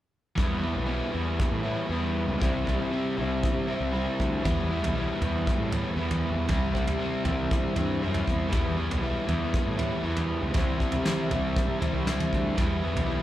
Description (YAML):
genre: psychedelic rock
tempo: 118 BPM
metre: 4/4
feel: straight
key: E minor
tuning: A4 = 441 Hz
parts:
  - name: overdriven electric guitar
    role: riff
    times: 0.4-13.2 s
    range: C3 to E4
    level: -29 LUFS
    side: left 1 dB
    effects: none
  - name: fuzz fingered electric bass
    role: bass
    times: 0.4-13.2 s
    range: B1 to C3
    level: -30 LUFS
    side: equal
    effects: overdrive
  - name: soft brush drum kit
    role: drums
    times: 0.4-13.1 s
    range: kick drum, snare drum, toms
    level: -29 LUFS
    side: equal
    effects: none
room: moderate large studio reverb, RT60 0.9 s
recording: band playing live in one room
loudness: -25 LUFS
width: side -13 dB against mid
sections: 0.4-13.2 A section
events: none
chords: 0.4 Em; 2.4 C; 4.5 Em; 6.5 C; 8.5 Em; 10.6 C; 12.6 Em